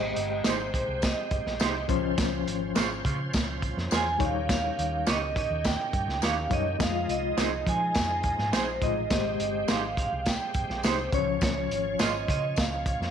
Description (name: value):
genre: uptempo 1960s-style soul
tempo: 104 BPM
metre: 4/4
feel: straight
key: Ab major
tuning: A4 = 440 Hz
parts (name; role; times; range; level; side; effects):
- vibraphone with hard mallets; melody; 0.0-13.1 s; C5 to Ab5; -30 LUFS; right 3 dB; none
- overdriven reed electric piano; accompaniment; 0.0-12.1 s; Eb3 to Eb5; -31 LUFS; left 12 dB; fast tremolo
- bright tonewheel organ; sustained chords; 0.0-13.1 s; Eb3 to Db5; -37 LUFS; equal; overdrive, chorus vibrato, slow rotary speaker
- hollow-body short-scale fingered electric bass; bass; 0.0-13.1 s; G1 to F3; -34 LUFS; equal; none
- crunchy breakbeat drum kit; drums; 0.2-13.1 s; hi-hat, kick drum, snare drum; -29 LUFS; equal; none
- electric guitar through a small old amp; stabs; 0.4-12.1 s; Ab3 to Db5; -34 LUFS; right 10 dB; tape echo
- tambourine; percussion; 0.4-12.7 s; none; -42 LUFS; left 13 dB; none
room: light reverb, small room reverb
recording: 1960s-style stereo with parts hard left and right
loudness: -25 LUFS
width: side -8 dB against mid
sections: 0.0-13.1 A section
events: none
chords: 0.0 Abmaj7; 1.9 Dbmaj7; 4.2 Eb7; 6.8 Fm7; 9.1 Abmaj7; 11.1 Db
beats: 0.45 1.02 1.60 | 2.18 2.76 3.33 3.91 | 4.49 5.07 5.64 6.22 | 6.80 7.37 7.95 8.53 | 9.11 9.68 10.26 10.84 | 11.41 11.99 12.57